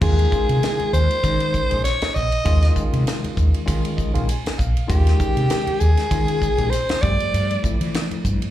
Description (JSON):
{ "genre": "electric jazz fusion", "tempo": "98 BPM", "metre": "4/4", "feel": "swing 55% on 16ths", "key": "unclear", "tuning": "A4 = 440 Hz", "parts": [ { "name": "growling soprano saxophone", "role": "melody", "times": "0.0-7.6 s", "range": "G4 to Eb5", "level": "-23 LUFS", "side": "equal", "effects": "slapback echo, analog delay" }, { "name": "tine electric piano", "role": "accompaniment", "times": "0.0-8.5 s", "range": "Eb3 to Ab5", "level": "-27 LUFS", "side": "left 1 dB", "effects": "medium stereo tremolo, slapback echo" }, { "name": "mellow fretless electric bass", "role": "bass", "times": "0.0-8.4 s", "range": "Bb1 to E3", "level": "-19 LUFS", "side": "equal", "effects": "none" }, { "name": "tight funk drum kit", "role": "drums", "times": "0.0-8.5 s", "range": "crash cymbal, hi-hat, kick drum, ride cymbal, snare drum", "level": "-24 LUFS", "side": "equal", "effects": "none" } ], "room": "little or no reverb", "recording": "live gig heard through the venue's PA, club reverb", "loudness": "-17 LUFS", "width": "side -13 dB against mid", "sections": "0.0-8.5 A section", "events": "tine electric piano fill 3.7-4.9", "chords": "0.0 Eb9sus4; 7.0 G9sus4" }